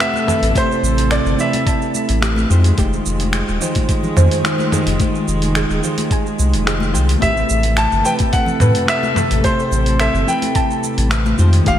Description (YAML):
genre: sunset chillout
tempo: 108 BPM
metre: 4/4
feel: straight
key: unclear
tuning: A4 = 440 Hz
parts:
  - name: bright concert grand piano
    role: melody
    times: 0.0-1.9, 7.2-11.8 s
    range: C5 to A5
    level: -20 LUFS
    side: left 1 dB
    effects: digital delay
  - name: clean electric guitar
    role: accompaniment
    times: 0.0-11.8 s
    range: Ab3 to C5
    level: -23 LUFS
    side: moving between left 4 dB and right 3 dB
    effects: auto-pan, digital delay
  - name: dark symphonic string section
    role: sustained chords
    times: 0.0-11.8 s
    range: C3 to A4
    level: -24 LUFS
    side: right 2 dB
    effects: none
  - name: dusty soul sampler-style drum kit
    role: drums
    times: 0.0-11.8 s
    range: finger snaps, hi-hat, shaker, toms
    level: -22 LUFS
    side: right 1 dB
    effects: gated reverb
  - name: congas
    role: percussion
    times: 0.1-11.8 s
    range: none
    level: -28 LUFS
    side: left 4 dB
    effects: none
  - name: soft round pluck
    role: arpeggios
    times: 0.3-11.8 s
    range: G4 to A5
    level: -27 LUFS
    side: right 3 dB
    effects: wide subtle chorus, digital delay
  - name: round analog bass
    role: bass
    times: 0.4-11.8 s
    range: Eb1 to A2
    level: -16 LUFS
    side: equal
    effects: none
  - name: electronic kick drum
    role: drums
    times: 0.6-11.8 s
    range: none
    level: -19 LUFS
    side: equal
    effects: none
room: moderate lush hall reverb, RT60 2.5 s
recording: bright 1980s-style digital production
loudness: -14 LUFS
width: side -10 dB against mid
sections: 0.0-11.8 A section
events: none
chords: 0.0 Am9; 2.5 Fm9; 7.2 Am9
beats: 0.00 | 0.56 1.11 1.67 2.22 | 2.78 3.33 3.89 4.44 | 5.00 5.55 6.11 6.67 | 7.22 7.78 8.33 8.89 | 9.44 10.00 10.55 11.11 | 11.67